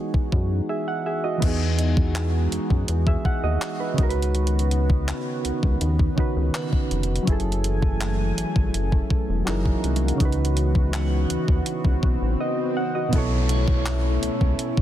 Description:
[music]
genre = contemporary R&B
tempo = 82 BPM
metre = 4/4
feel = straight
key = unclear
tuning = A4 = 440 Hz
[part]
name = soft electric-piano-like synth keys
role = accompaniment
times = 0.0-14.8 s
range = B2 to F#5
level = -27 LUFS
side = right 2 dB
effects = chorus
[part]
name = chorused pulse-width pad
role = sustained chords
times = 0.0-14.8 s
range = D#3 to G#5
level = -30 LUFS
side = equal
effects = none
[part]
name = clean 12-bit digital drum machine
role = drums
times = 0.1-14.8 s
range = crash cymbal, handclaps, hi-hat, kick drum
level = -23 LUFS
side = equal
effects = soft clipping on snare
[part]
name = rubbery square bass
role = bass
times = 0.3-14.6 s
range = E1 to F#2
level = -23 LUFS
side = equal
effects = none
[part]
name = glassy synth bell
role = texture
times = 1.8-14.8 s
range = F#4 to D#5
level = -39 LUFS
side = left 3 dB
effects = chorus, digital delay
[part]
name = swell and downlifter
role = sound effects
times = 11.7-14.8 s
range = none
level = -33 LUFS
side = right 1 dB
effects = none
[sound]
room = little or no reverb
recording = dense, heavily limited modern master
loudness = -20 LUFS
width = side -12 dB against mid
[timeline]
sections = 0.0-1.4 A section; 1.4-13.1 B section; 13.1-14.8 C section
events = break 0.7-1.4; swell 11.7-13.1; silent gap 12.4-13.1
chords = 0.0 Emaj9; 4.0 C#9sus4; 7.3 F#m9; 9.5 F#13; 10.2 C#9sus4; 13.1 B9sus4

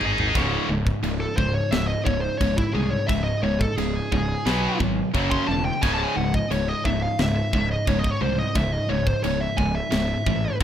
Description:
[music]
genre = heavy metal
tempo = 88 BPM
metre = 4/4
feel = straight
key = C# harmonic minor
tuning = A4 = 440 Hz
[part]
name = high-gain distorted guitar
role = riff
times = 0.0-10.6 s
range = C#2 to G#4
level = -24 LUFS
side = equal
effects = distortion
[part]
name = fuzz fingered electric bass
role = bass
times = 0.0-10.6 s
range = C#1 to B#1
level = -27 LUFS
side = equal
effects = overdrive
[part]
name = tight metal drum kit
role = drums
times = 0.0-10.6 s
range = china cymbal, kick drum, snare drum, toms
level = -28 LUFS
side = equal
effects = none
[part]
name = high-gain lead guitar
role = melody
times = 1.2-10.6 s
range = E4 to B#5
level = -27 LUFS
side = equal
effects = distortion
[sound]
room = small room ambience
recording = rough home demo mix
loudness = -21 LUFS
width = side -10 dB against mid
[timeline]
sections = 0.3-10.6 A section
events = drum fill 0.0-0.3; lead electric guitar solo 0.3-10.6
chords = 0.3 C#5; 4.5 B5; 5.1 F#5; 5.8 C#m

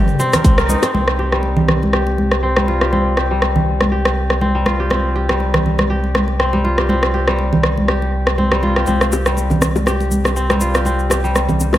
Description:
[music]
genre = afro house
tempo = 121 BPM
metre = 4/4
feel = swing 55% on 16ths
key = C minor pentatonic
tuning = A4 = 439 Hz
[part]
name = kora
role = arpeggios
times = 0.0-11.8 s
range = G3 to Bb4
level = -20 LUFS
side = left 1 dB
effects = vintage 12-bit sampler grit, sidechain pumping, low-pass filter, tape echo
[part]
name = warm sub bass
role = bass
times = 0.1-11.8 s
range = G1 to C2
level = -19 LUFS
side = equal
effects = sidechain pumping
[part]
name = cabasa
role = percussion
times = 0.1-0.9, 8.9-11.8 s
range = none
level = -30 LUFS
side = left 1 dB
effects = none
[part]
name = congas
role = percussion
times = 0.1-11.8 s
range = none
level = -21 LUFS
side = right 1 dB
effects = none
[part]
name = bongos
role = percussion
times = 0.2-0.9, 9.1-11.8 s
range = none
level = -25 LUFS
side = left 3 dB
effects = none
[part]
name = deep house drum kit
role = drums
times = 0.3-11.8 s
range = hi-hat, rim click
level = -19 LUFS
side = equal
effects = none
[part]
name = electronic kick drum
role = drums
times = 0.4-0.6 s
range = none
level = -13 LUFS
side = equal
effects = none
[sound]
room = moderate lush hall reverb, RT60 1.8 s, small room reverb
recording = none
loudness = -14 LUFS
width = side -13 dB against mid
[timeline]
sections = 0.9-11.8 A section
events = band accent 0.6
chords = 0.0 Ebadd9; 0.9 Csus4

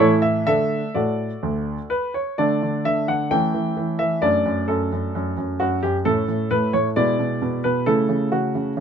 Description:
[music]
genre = classical-period piano sonatina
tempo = 123-134 BPM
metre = 4/4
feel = rubato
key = D major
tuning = A4 = 440 Hz
[part]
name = clear baby grand piano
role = solo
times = 0.0-8.8 s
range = D2 to G5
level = -19 LUFS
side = right 1 dB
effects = none
[sound]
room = little or no reverb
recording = close, detailed microphones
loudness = -19 LUFS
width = side -7 dB against mid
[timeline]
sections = 0.0-2.4 A section; 2.4-8.8 B section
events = none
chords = 0.0 A; 0.5 D; 2.4 D5; 3.3 A7/E; 4.2 D/F#; 6.0 A; 7.0 E7/B; 7.9 A/C#

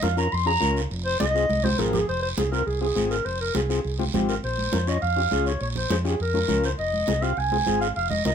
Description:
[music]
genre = latin, cumbia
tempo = 204 BPM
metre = 4/4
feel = straight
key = F minor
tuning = A4 = 440 Hz
[part]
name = mellow clarinet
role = melody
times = 0.0-8.3 s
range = Ab4 to C6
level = -25 LUFS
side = equal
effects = none
[part]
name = overdriven combo organ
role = accompaniment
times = 0.0-8.3 s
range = C4 to Db5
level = -28 LUFS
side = left 6 dB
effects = none
[part]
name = fingered electric bass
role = bass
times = 0.0-8.3 s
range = F1 to F2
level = -28 LUFS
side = right 1 dB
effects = none
[part]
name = congas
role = percussion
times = 0.0-8.3 s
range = none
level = -29 LUFS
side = right 3 dB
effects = none
[part]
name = guiro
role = percussion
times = 0.0-8.3 s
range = none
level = -35 LUFS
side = right 7 dB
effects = none
[sound]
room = moderate studio ambience, RT60 0.5 s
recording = minimal, uncompressed stereo recording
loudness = -22 LUFS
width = side -8 dB against mid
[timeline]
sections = 0.0-2.1 A section; 2.1-8.3 B section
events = clarinet solo 0.0-2.1; drum fill 1.5-2.1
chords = 0.0 Bbm; 0.9 Fm; 4.4 Bbmadd9; 6.8 Fm

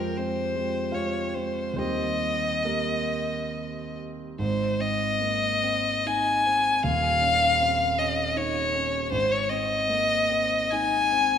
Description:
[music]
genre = classical, romantic duo for violin and grand piano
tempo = 66-82 BPM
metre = 3/4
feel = rubato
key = Ab major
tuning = A4 = 440 Hz
[part]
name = rich violin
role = melody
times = 0.0-11.4 s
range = Bb4 to Ab5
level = -24 LUFS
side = left 3 dB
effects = none
[part]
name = dark concert grand piano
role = accompaniment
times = 0.0-11.4 s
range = Eb1 to G5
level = -29 LUFS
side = right 3 dB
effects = none
[sound]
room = moderate scoring stage reverb, RT60 2.0 s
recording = minimal, uncompressed stereo recording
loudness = -23 LUFS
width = side -8 dB against mid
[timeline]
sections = 0.0-4.4 A section; 4.4-11.4 B section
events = none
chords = 0.0 Fm; 1.8 Eb; 4.4 Ab; 6.8 Dbmaj9/Eb; 9.1 Ab

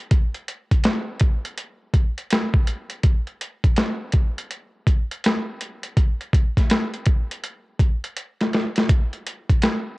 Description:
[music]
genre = hip hop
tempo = 82 BPM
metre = 4/4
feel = swing 64% on 16ths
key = none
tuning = none
[part]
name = boom bap sampler-style drum kit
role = drums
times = 0.1-9.8 s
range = hi-hat, kick drum, snare drum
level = -19 LUFS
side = equal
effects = overdrive, vintage 12-bit sampler grit, cassette tape
[sound]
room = light reverb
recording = home recording on cassette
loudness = -19 LUFS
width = side -22 dB against mid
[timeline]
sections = 0.0-8.9 A section; 8.9-10.0 B section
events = drum fill 8.2-8.9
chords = none

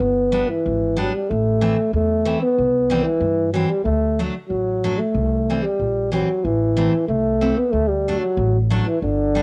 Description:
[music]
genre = alpine folk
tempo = 93 BPM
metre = 2/4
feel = straight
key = G major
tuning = A4 = 440 Hz
[part]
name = mellow euphonium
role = melody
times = 0.0-9.4 s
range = D3 to B3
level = -22 LUFS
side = equal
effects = cassette tape
[part]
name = upright bass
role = bass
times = 0.0-9.4 s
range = G1 to G2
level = -26 LUFS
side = equal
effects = none
[part]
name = picked steel-string acoustic guitar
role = accompaniment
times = 0.3-9.4 s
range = E3 to D4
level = -27 LUFS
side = equal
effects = cassette tape
[sound]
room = light reverb, small room ambience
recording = home recording on cassette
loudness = -20 LUFS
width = mono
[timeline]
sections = 0.0-9.4 A section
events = none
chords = 0.0 G; 1.3 Am; 2.6 C; 3.9 D; 5.2 C; 6.5 Am; 7.7 D

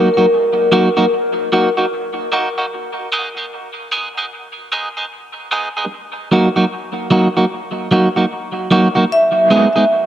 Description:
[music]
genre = reggae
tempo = 75 BPM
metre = 4/4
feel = swing 62% on 16ths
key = G# minor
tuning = A4 = 441 Hz
[part]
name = vibraphone with hard mallets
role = melody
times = 0.0-1.1, 9.1-10.1 s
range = A#4 to E5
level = -15 LUFS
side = equal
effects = dub echo
[part]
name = clean electric guitar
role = accompaniment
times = 0.0-9.8 s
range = F#3 to G#4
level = -15 LUFS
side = right 1 dB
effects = high-pass filter, dub echo
[sound]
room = wet spring reverb, RT60 1.8 s, studio reverb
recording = echo-heavy mix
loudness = -13 LUFS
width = side -11 dB against mid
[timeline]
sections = 0.0-10.1 A section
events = break 0.0-9.1; filter sweep on clean electric guitar 0.0-5.9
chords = 0.0 D#m; 2.7 G#m; 5.9 D#m; 9.1 G#m

